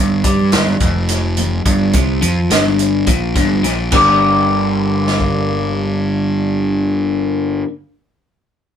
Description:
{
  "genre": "psychedelic rock",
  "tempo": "212 BPM (eighths)",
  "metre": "7/8",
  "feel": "straight",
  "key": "G minor",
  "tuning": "A4 = 440 Hz",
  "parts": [
    { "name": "electric guitar through a small old amp", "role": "riff", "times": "0.0-7.7 s", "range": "F2 to G4", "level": "-15 LUFS", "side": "left 1 dB", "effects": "phaser" },
    { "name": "fuzz fingered electric bass", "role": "bass", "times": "0.0-7.6 s", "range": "F1 to G2", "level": "-19 LUFS", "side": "equal", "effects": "overdrive" },
    { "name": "vintage drum kit", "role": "drums", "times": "0.2-5.3 s", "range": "crash cymbal, hi-hat, kick drum, snare drum", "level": "-18 LUFS", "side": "right 1 dB", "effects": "none" },
    { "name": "congas", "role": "percussion", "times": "0.3-4.2 s", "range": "none", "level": "-30 LUFS", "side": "right 2 dB", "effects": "none" }
  ],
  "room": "light reverb",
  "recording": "band playing live in one room",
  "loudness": "-13 LUFS",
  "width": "side -8 dB against mid",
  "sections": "0.0-3.9 A section; 3.9-7.9 B section",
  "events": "none",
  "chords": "0.0 Gm",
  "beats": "0.24 0.53 0.81 1.09 1.38 1.66 | 1.94 2.23 2.51 2.79 3.08 3.36 3.64 | 3.93 4.21 4.49 4.78 5.06 5.34 5.63 | 5.91 6.19 6.48 6.76 7.04 7.33 7.61"
}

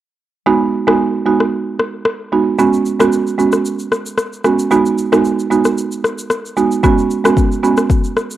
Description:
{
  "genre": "afrobeats",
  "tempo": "113 BPM",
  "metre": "4/4",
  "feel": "swing 55% on 16ths",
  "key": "G# minor",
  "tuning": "A4 = 439 Hz",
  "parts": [
    { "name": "buzzing marimba with medium mallets", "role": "accompaniment", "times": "0.5-7.8 s", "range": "G#3 to F#4", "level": "-14 LUFS", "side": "right 4 dB", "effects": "none" },
    { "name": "afro-pop drum kit", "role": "drums", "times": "0.9-8.4 s", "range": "kick drum, rim click, shaker", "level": "-17 LUFS", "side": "left 2 dB", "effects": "cassette tape" }
  ],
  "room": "light reverb, digital ambience",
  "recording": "home recording on cassette",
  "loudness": "-13 LUFS",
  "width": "side -13 dB against mid",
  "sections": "0.5-8.4 A section",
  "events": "none",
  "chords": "0.5 G#m7; 2.6 C#7sus4; 4.7 G#m7; 6.8 C#7sus4",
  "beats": "| 0.47 1.00 1.53 2.06 | 2.59 3.12 3.65 4.18 | 4.71 5.24 5.78 6.31 | 6.84 7.37 7.90"
}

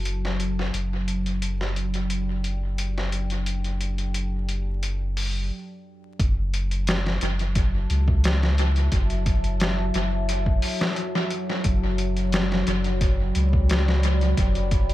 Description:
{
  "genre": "trip hop",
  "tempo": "88 BPM",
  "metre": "4/4",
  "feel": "straight",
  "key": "F# phrygian",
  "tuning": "A4 = 440 Hz",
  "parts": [
    { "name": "deep dark ambient pad", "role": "sustained chords", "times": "0.0-14.9 s", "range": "F#3 to B5", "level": "-30 LUFS", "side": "left 1 dB", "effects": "chorus, built-in reverb" },
    { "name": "warm sub bass", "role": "bass", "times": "0.0-14.9 s", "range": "F#1 to C#2", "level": "-24 LUFS", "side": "equal", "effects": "none" },
    { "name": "trip hop sampler-style drum kit", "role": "drums", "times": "0.1-14.9 s", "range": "hi-hat, kick drum, snare drum", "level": "-26 LUFS", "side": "equal", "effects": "high-pass filter on hats, high-pass filter on snare, high-pass filter on kick, high-pass filter on room, tape echo" }
  ],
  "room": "little or no reverb",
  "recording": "echo-heavy mix, vinyl crackle",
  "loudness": "-22 LUFS",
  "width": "side -15 dB against mid",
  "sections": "0.0-6.2 A section; 6.2-14.9 B section",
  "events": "filter sweep on ambient pad 0.0-6.2; stop 5.5-6.2",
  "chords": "0.0 F#m7; 0.7 Gmaj9/F#; 6.2 F#m7; 11.6 Gmaj7#11/F#",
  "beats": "0.06 | 0.74 1.42 2.10 2.78 | 3.47 4.15 4.83 5.51 | 6.19 6.88 7.56 8.24 | 8.92 9.60 10.28 10.97 | 11.65 12.33 13.01 13.69 | 14.38"
}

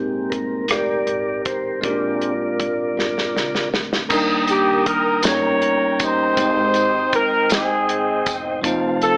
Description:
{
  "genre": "slow gospel",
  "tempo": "53 BPM (dotted quarters)",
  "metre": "6/8",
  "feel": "straight",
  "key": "Eb major",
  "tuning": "A4 = 440 Hz",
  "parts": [
    { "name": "bell-like tine electric piano", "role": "accompaniment", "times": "0.0-9.2 s", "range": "G2 to G5", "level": "-27 LUFS", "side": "equal", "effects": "none" },
    { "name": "mellow tonewheel organ", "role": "sustained chords", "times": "0.0-9.2 s", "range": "Ab3 to Eb6", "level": "-26 LUFS", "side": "equal", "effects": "slow rotary speaker" },
    { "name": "upright bass", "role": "bass", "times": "0.0-9.2 s", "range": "Fb1 to Eb2", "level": "-36 LUFS", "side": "equal", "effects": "none" },
    { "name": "warm soul drum kit", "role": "drums", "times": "0.3-9.2 s", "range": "crash cymbal, hi-hat, kick drum, rim click, snare drum", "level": "-25 LUFS", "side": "equal", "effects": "none" },
    { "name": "tambourine", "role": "percussion", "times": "4.1-9.2 s", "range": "none", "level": "-33 LUFS", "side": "equal", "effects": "none" },
    { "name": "warm horn section", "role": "melody", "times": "4.5-9.2 s", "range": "C4 to Db5", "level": "-20 LUFS", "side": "equal", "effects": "none" }
  ],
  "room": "moderate large studio reverb, RT60 1.3 s, studio ambience",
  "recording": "AM radio sound",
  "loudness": "-20 LUFS",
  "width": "mono",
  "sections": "0.0-4.1 A section; 4.1-9.2 B section",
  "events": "tonewheel organ solo 0.0-4.1; drum fill 3.0-4.1",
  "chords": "0.0 Abmaj9; 1.8 Bb13; 4.1 Ebmaj7; 5.2 Eb7/G; 6.4 Abmaj7; 8.6 F7",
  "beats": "0.70 | 1.83 2.97 | 4.11 5.24 | 6.38 7.51 | 8.64"
}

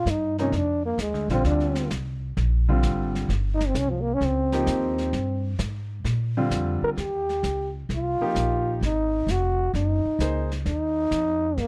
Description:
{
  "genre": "jazz, small-group swing and bop",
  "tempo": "130 BPM",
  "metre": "4/4",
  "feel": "swing 68% on 8ths",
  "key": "Eb major",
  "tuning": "A4 = 440 Hz",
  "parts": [
    { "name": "growling trombone", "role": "melody", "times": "0.0-11.7 s", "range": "F3 to Bb4", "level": "-28 LUFS", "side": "equal", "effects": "none" },
    { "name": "upright bass", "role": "bass", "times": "0.0-11.7 s", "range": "F1 to Bb2", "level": "-29 LUFS", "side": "equal", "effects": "none" },
    { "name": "vintage brush drum kit", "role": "drums", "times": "0.1-11.7 s", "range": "brushed snare drum, hi-hat, snare drum", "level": "-38 LUFS", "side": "equal", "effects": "none" },
    { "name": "warm baby grand piano", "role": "accompaniment", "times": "0.4-10.5 s", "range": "C3 to C5", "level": "-30 LUFS", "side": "equal", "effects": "none" }
  ],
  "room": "small room ambience",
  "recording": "none",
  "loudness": "-25 LUFS",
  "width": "mono",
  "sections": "0.0-7.0 A section; 7.0-11.7 B section",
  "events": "trombone solo 0.0-7.0",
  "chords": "0.0 Bb7; 3.3 Eb7; 6.1 Bb; 7.0 Eb7; 8.8 Ab7; 10.7 N.C.",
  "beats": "0.07 0.53 0.99 | 1.45 1.91 2.37 2.83 | 3.29 3.75 4.21 4.67 | 5.13 5.59 6.05 6.51 | 6.97 7.43 7.90 8.36 | 8.82 9.28 9.74 10.20 | 10.66 11.12 11.58"
}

